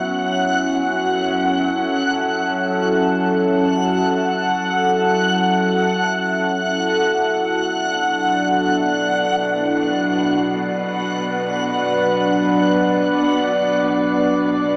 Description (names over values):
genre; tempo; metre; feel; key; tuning
ambient; free time; none; none; B minor; A4 = 440 Hz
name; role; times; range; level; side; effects
evolving wavetable pad; sustained chords; 0.0-14.8 s; F#3 to E5; -21 LUFS; equal; chorus, built-in reverb, phaser, shimmer reverb
rich studio cello section; bass; 0.0-14.8 s; F#2 to B2; -34 LUFS; equal; none
backwards swelling texture; texture; 0.0-14.8 s; F#5 to F#6; -24 LUFS; equal; built-in reverb, shimmer reverb
room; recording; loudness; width
wet spring reverb, RT60 2.5 s; small speaker sound; -19 LUFS; mono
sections
0.0-14.8 A section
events
fade-in on cello section 0.0-14.8; fade-out 13.2-14.8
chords
0.0 F#m7; 6.8 Bm